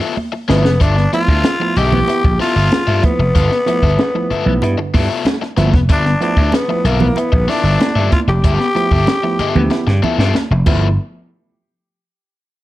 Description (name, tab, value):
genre	funk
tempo	94 BPM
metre	4/4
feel	straight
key	G mixolydian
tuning	A4 = 439 Hz
part	overdriven electric guitar	accompaniment	0.0-10.9 s	B3 to F5	-21 LUFS	left 6 dB	none
part	congas	percussion	0.2-11.0 s	none	-24 LUFS	right 4 dB	none
part	growling tenor saxophone	melody	0.5-10.2 s	Bb3 to G4	-18 LUFS	left 1 dB	tape echo
part	tine electric piano	stabs	0.5-10.9 s	G2 to E4	-22 LUFS	right 4 dB	overdrive
part	vintage slap bass	bass	0.5-11.0 s	F1 to G2	-15 LUFS	equal	none
part	compact cocktail drum kit	drums	0.5-10.8 s	crash cymbal, hi-hat, kick drum, snare drum	-17 LUFS	equal	none
room	light reverb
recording	cassette tape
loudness	-12 LUFS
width	side -16 dB against mid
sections	0.0-11.0 A section; 11.0-12.6 B section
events	drum fill 0.2-0.8, 9.7-11.0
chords	0.0 G13; 11.0 N.C.